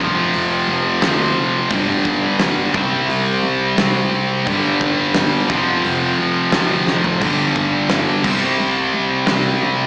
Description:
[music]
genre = hard rock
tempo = 87 BPM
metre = 4/4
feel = straight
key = unclear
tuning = A4 = 440 Hz
[part]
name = heavy high-gain guitar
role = riff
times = 0.0-9.9 s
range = F2 to C4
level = -20 LUFS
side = equal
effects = distortion
[part]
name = sludgy distorted guitar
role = riff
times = 0.0-9.9 s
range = F2 to C4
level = -22 LUFS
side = equal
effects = overdrive, slapback echo
[part]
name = upright bass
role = bass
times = 0.0-9.9 s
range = F1 to D2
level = -30 LUFS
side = equal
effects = none
[part]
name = big rock drum kit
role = drums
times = 0.3-9.4 s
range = crash cymbal, hi-hat, kick drum, snare drum, toms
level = -25 LUFS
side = equal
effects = none
[sound]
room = small room ambience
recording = live gig heard through the venue's PA, recital hall reverb, small speaker sound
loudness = -17 LUFS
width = mono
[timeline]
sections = 0.0-9.9 A section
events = drum fill 6.9-7.2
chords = 0.0 F5; 1.7 G5; 2.7 C5; 4.5 G5; 5.5 F5; 7.2 G5; 8.2 C5

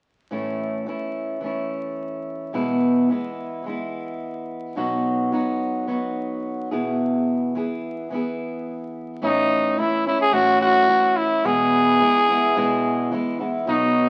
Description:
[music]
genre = pop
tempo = 108 BPM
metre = 4/4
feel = swing 55% on 16ths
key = E major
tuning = A4 = 439 Hz
[part]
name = fingerpicked steel-string acoustic guitar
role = accompaniment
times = 0.3-14.1 s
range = E2 to G#4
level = -25 LUFS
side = equal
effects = none
[part]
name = growling trumpet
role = melody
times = 9.2-14.1 s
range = D#4 to G#4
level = -20 LUFS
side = equal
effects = none
[sound]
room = moderate club reverb, RT60 0.7 s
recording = very old 78 rpm record, vinyl crackle, nothing above 10.9 kHz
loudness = -22 LUFS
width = mono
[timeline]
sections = 0.3-9.2 A section; 9.2-14.1 B section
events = none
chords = 0.3 A; 2.5 E; 4.8 B; 6.7 E; 9.2 A; 11.4 E

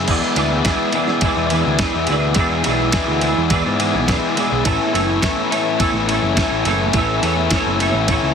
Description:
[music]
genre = indie rock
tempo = 105 BPM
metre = 4/4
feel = straight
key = A major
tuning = A4 = 437 Hz
[part]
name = fuzz guitar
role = riff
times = 0.0-8.3 s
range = E2 to E4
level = -20 LUFS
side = left 10 dB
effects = distortion
[part]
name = twelve-string electric guitar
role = riff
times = 0.0-8.3 s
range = E3 to D5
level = -20 LUFS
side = right 6 dB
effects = ensemble chorus, analog delay
[part]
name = growling picked electric bass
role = bass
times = 0.0-8.3 s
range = F#1 to G#2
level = -22 LUFS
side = right 1 dB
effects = overdrive
[part]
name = dusty soul sampler-style drum kit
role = drums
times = 0.1-8.2 s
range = crash cymbal, kick drum, ride cymbal, snare drum, splash cymbal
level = -22 LUFS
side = right 1 dB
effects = none
[sound]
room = light reverb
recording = heavily compressed radio sound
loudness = -15 LUFS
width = side -6 dB against mid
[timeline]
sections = 0.0-8.3 A section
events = none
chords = 0.1 E7; 4.7 Aadd9

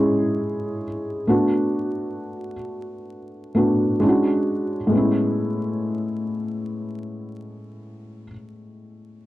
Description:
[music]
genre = hip hop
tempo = 66 BPM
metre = 4/4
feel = swing 58% on 16ths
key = A major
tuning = A4 = 440 Hz
[part]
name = felt-muted upright piano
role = accompaniment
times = 0.0-9.3 s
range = A2 to G#4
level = -21 LUFS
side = equal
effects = low-pass filter
[sound]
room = moderate small room reverb, RT60 0.5 s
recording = worn, warbling old tape, cassette tape, vinyl crackle, warbly pitch drift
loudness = -20 LUFS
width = side -16 dB against mid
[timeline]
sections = 0.0-4.9 A section; 4.9-8.6 B section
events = none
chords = 0.0 C#madd11/G#; 1.3 Bm7/A; 4.0 Dmaj7#11/G#; 4.9 Amaj7

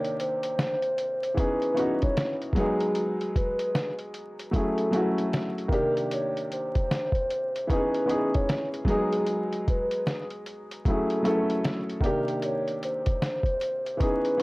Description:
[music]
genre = lo-fi hip hop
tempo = 76 BPM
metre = 4/4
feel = swing 61% on 16ths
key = unclear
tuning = A4 = 440 Hz
[part]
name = hollow clarinet-like synth lead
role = melody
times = 0.0-14.4 s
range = A4 to C#5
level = -29 LUFS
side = equal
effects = chorus, low-pass filter
[part]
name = bright upright piano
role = accompaniment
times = 0.0-14.4 s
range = C3 to A4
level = -28 LUFS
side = equal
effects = cassette tape, low-pass filter
[part]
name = lo-fi sampler-style drum kit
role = drums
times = 0.0-14.4 s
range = hi-hat, kick drum, snare drum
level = -29 LUFS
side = equal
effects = vintage 12-bit sampler grit
[sound]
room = light reverb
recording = dry, gritty hardware recording, vinyl crackle, lossy compression artefacts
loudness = -24 LUFS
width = side -22 dB against mid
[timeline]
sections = 0.0-1.4 A section; 1.4-14.4 B section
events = break 0.0-1.4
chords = 0.0 Cm7; 1.4 C#m7; 2.6 G#m7; 4.5 F#m7; 5.7 Cm7; 7.7 C#m7; 8.9 G#m7; 10.8 F#m7; 12.0 Cm7

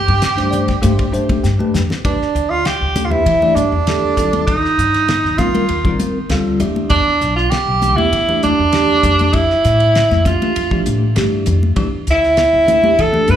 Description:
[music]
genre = electric jazz fusion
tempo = 99 BPM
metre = 4/4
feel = straight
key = unclear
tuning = A4 = 440 Hz
[part]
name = mellow tenor saxophone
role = melody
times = 0.0-13.4 s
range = D4 to B4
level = -15 LUFS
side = right 2 dB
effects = slapback echo
[part]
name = upright bass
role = bass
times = 0.1-13.4 s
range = B1 to G3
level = -19 LUFS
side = equal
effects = none
[part]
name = damped 70s drum kit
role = drums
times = 0.1-13.4 s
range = hi-hat, kick drum, ride cymbal, snare drum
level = -22 LUFS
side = equal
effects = none
[part]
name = bell-like tine electric piano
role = accompaniment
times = 0.2-13.4 s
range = E3 to A5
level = -20 LUFS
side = left 1 dB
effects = phaser, slapback echo
[part]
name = congas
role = percussion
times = 0.5-13.4 s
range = none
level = -24 LUFS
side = left 3 dB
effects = slapback echo
[sound]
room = light reverb, small room ambience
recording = live gig heard through the venue's PA, club reverb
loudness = -12 LUFS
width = side -10 dB against mid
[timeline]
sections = 0.0-2.1 A section; 2.1-13.4 B section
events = tine electric piano fill 0.2-2.1, 6.0-6.9; drum fill 1.4-2.1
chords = 0.0 G9sus4; 2.1 Em7; 4.2 Ebadd9(#11); 6.6 G69/B; 9.0 Fmaj9; 11.8 Em7

